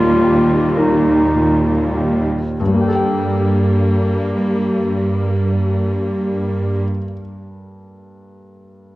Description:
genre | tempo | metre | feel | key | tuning
cinematic, emotional film score for orchestra | 47-58 BPM | 3/4 | rubato | G minor | A4 = 437 Hz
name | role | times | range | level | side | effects
mellow clarinet | second line | 0.0-6.8 s | Eb4 to G4 | -20 LUFS | equal | none
bright grand piano | accompaniment | 0.0-9.0 s | Eb2 to G5 | -23 LUFS | left 2 dB | none
rich studio viola section | accompaniment | 0.0-6.8 s | G3 to Bb3 | -22 LUFS | right 1 dB | none
concert harp | arpeggios | 0.0-7.2 s | G2 to G5 | -28 LUFS | left 3 dB | none
rich studio cello section | bass | 0.0-6.8 s | Eb2 to G2 | -19 LUFS | right 1 dB | none
room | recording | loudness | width
moderate concert hall reverb, RT60 2.1 s | worn, warbling old tape, cassette tape, warbly pitch drift | -14 LUFS | side -18 dB against mid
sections
0.0-2.6 A section; 2.6-6.4 B section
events
slowing down 0.0-2.6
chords
0.0 Ebadd9; 2.6 Gmadd9

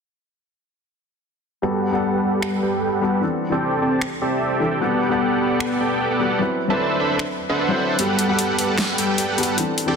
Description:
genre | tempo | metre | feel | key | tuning
future bass | 151 BPM | 4/4 | half-time | G major | A4 = 440 Hz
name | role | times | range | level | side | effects
dark baby grand piano | accompaniment | 1.6-10.0 s | E3 to F#5 | -24 LUFS | left 4 dB | ping-pong delay
dense compressed supersaw | riff | 1.6-10.0 s | G3 to B5 | -20 LUFS | right 1 dB | low-pass filter, ping-pong delay
dubstep drum kit | drums | 2.4-9.9 s | finger snaps, hi-hat, snare drum | -26 LUFS | equal | soft clipping on snare
room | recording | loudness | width
moderate lush hall reverb, RT60 1.7 s, digital ambience | dense, heavily limited modern master | -18 LUFS | side -6 dB against mid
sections
1.6-10.0 A section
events
filter sweep on supersaw synth 1.6-10.0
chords
1.6 Gmaj9; 3.2 C69; 4.8 Gmaj9; 6.4 D13; 8.0 Gmaj9

